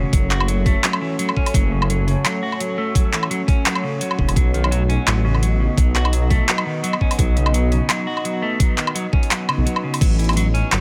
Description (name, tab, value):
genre	half-time drum and bass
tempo	170 BPM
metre	4/4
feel	swing 54% on 16ths, half-time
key	unclear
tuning	A4 = 440 Hz
part	deep dark ambient pad	sustained chords	0.0-10.8 s	A3 to D#5	-29 LUFS	equal	chorus, built-in reverb, sidechain pumping
part	clean electric guitar	arpeggios	0.0-10.8 s	C#3 to F#4	-27 LUFS	equal	vintage 12-bit sampler grit, tape echo
part	dark detuned saw bass	bass	0.0-10.8 s	E1 to B1	-21 LUFS	equal	none
part	drum and bass drum kit	drums	0.1-10.8 s	crash cymbal, handclaps, hi-hat, woodblock	-25 LUFS	equal	overdrive
part	electronic kick drum	drums	0.1-10.1 s	none	-20 LUFS	equal	overdrive
room	light reverb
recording	none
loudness	-19 LUFS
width	mono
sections	0.0-10.8 A section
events	none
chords	0.0 F#m; 4.4 B; 10.0 A